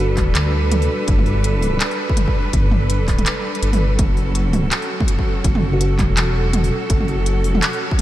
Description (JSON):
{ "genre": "half-time drum and bass", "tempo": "165 BPM", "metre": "4/4", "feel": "swing 58% on 16ths, half-time", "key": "F# phrygian", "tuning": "A4 = 442 Hz", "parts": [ { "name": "kalimba", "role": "melody", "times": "0.0-0.1, 5.7-5.9 s", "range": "F#4", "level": "-30 LUFS", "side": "equal", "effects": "analog delay" }, { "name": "rich studio cello section", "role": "sustained chords", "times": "0.0-8.0 s", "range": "F#3 to B4", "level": "-24 LUFS", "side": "right 1 dB", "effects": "sidechain pumping" }, { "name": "dark detuned saw bass", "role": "bass", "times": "0.0-7.6 s", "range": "E1 to D2", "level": "-18 LUFS", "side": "equal", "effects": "none" }, { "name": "electronic kick drum", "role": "drums", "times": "0.2-8.0 s", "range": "none", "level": "-19 LUFS", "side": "equal", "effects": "none" }, { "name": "industrial drum kit", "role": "drums", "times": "0.2-8.0 s", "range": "handclaps, hi-hat, toms", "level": "-22 LUFS", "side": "right 1 dB", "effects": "none" } ], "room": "light reverb", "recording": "none", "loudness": "-16 LUFS", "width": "side -14 dB against mid", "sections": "0.0-8.0 A section", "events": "kick drops out 3.6-4.0", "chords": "0.0 G; 4.0 F#m" }